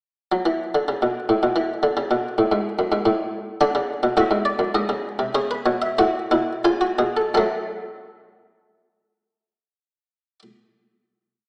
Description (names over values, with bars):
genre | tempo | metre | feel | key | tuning
classical, baroque-style 3-part fugue for harpsichord | 82-111 BPM | 3/4 | straight | F# minor | A4 = 435 Hz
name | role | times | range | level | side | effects
buff-stop harpsichord | solo | 0.3-10.4 s | F#2 to G#5 | -22 LUFS | equal | none
room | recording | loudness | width
wet recital hall reverb, RT60 1.8 s | small speaker sound | -22 LUFS | mono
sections
0.3-7.3 exposition; 7.3-11.5 final chord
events
slowing down 2.8-7.3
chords
0.3 N.C.; 3.6 D; 4.8 G#7; 5.4 F#m; 6.6 C#7; 7.3 F#m